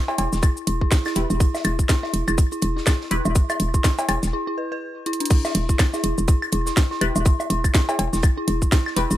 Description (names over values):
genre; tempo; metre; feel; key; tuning
minimal techno; 123 BPM; 4/4; swing 58% on 16ths; E minor; A4 = 440 Hz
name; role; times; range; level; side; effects
dark detuned synth bell; riff; 0.1-9.1 s; D4 to B4; -27 LUFS; equal; chorus, phaser, sidechain pumping, dub echo
big rock drum kit; drums; 0.1-9.2 s; hi-hat, snare drum; -37 LUFS; right 3 dB; sidechain pumping on hats, high-pass filter on hats, high-pass filter on snare, high-pass filter on room
cowbell and woodblock; percussion; 0.1-8.9 s; none; -28 LUFS; left 2 dB; ping-pong delay
hollow knocking FM bass; bass; 0.2-9.2 s; E1; -23 LUFS; equal; sidechain pumping
garage drum kit; drums; 0.2-9.2 s; cabasa, crash cymbal, hi-hat, snare drum; -26 LUFS; equal; none
electronic kick drum; drums; 0.4-8.8 s; none; -18 LUFS; equal; none
filtered dub chord stab; stabs; 1.2-3.2, 7.0-9.1 s; E4 to B4; -28 LUFS; left 3 dB; phaser, ensemble chorus, cassette tape, ping-pong delay
room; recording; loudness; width
little or no reverb; none; -19 LUFS; side -13 dB against mid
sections
0.0-5.3 A section; 5.3-9.2 B section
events
break 4.3-5.3; drum fill 5.1; drop 5.3-9.2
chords
none